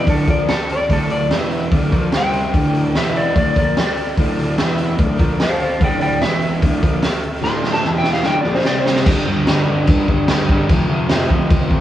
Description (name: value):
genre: garage rock duo or trio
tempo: 147 BPM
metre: 4/4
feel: straight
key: D minor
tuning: A4 = 442 Hz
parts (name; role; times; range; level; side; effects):
- electric slide guitar; melody; 0.0-9.0 s; A4 to C6; -21 LUFS; left 1 dB; analog delay
- overdriven combo organ; sustained chords; 0.0-9.0 s; C4 to E5; -29 LUFS; equal; none
- fuzz guitar; riff; 0.0-11.8 s; D2 to C4; -19 LUFS; equal; distortion
- raw garage drum kit; drums; 0.1-11.8 s; crash cymbal, hi-hat, kick drum, snare drum; -17 LUFS; equal; none
room: wet studio reverb, RT60 0.7 s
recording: band playing live in one room, cassette tape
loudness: -14 LUFS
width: side -12 dB against mid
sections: 0.0-9.1 A section; 9.1-11.8 B section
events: electric slide guitar solo 0.0-9.1; drum fill 7.4-9.1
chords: 0.1 Dm; 1.3 E5; 1.7 Dm; 2.1 C5; 2.5 Dm; 3.0 E5; 3.4 Dm; 4.6 E5; 5.0 Dm; 6.2 E5; 6.6 Dm; 7.9 E5; 8.3 Dm; 8.7 C5; 9.1 G5; 10.7 F5